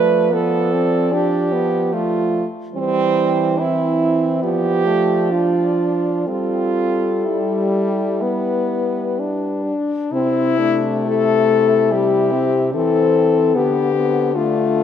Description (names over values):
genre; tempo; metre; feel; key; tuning
classical, lyrical piece for horn quartet; 60-75 BPM; 4/4; rubato; C major; A4 = 439 Hz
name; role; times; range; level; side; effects
warm French horn; melody; 0.0-14.8 s; D4 to D5; -21 LUFS; left 8 dB; none
mellow French horn; second line; 0.0-14.8 s; B3 to B4; -21 LUFS; right 6 dB; none
warm French horn; accompaniment; 0.0-14.8 s; G3 to D4; -22 LUFS; left 2 dB; none
mellow French horn; bass; 0.0-14.8 s; C3 to G3; -23 LUFS; right 1 dB; none
room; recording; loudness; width
moderate scoring stage reverb, RT60 1.9 s; none; -16 LUFS; side -9 dB against mid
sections
0.0-10.1 A section; 10.1-14.8 B section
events
none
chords
0.0 G7/F; 2.7 C/E; 4.4 Dm/F; 6.3 C/G; 8.2 G; 10.1 C; 13.5 G7/D